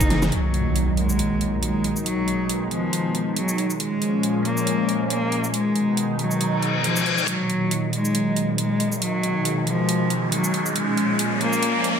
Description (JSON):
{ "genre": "heavy wobble dubstep", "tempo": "138 BPM", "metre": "4/4", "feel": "swing 55% on 16ths, half-time", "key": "Eb minor", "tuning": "A4 = 440 Hz", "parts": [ { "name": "clear cello", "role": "melody", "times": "0.0-12.0 s", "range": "F3 to Eb4", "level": "-24 LUFS", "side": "left 1 dB", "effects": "ping-pong delay" }, { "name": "lush unison pad", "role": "sustained chords", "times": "0.0-12.0 s", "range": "Bb2 to Ab4", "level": "-25 LUFS", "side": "equal", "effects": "chorus, phaser, sidechain pumping" }, { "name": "dubstep drum kit", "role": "drums", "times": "0.0-11.9 s", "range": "hi-hat, shaker, snare drum", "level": "-27 LUFS", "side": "right 2 dB", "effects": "overdrive" }, { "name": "impact, reverse cymbal and riser", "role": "sound effects", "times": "0.3-2.1, 6.6-12.0 s", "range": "none", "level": "-27 LUFS", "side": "left 1 dB", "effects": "none" } ], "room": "moderate digital room reverb, RT60 1.0 s", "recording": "high-pass filter", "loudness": "-20 LUFS", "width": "side -7 dB against mid", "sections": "0.3-7.3 A section; 7.3-12.0 B section", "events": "drum fill 0.1; impact 0.3-2.1; reverse cymbal 6.6-7.3; build-up 7.3-12.0; riser 7.3-12.0; filter sweep on analog synth pad 7.3-12.0", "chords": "0.3 Ebm; 2.1 Abm; 3.8 Db6; 5.5 Abm/Cb; 7.3 Ebm; 9.0 Abm; 10.8 Db6" }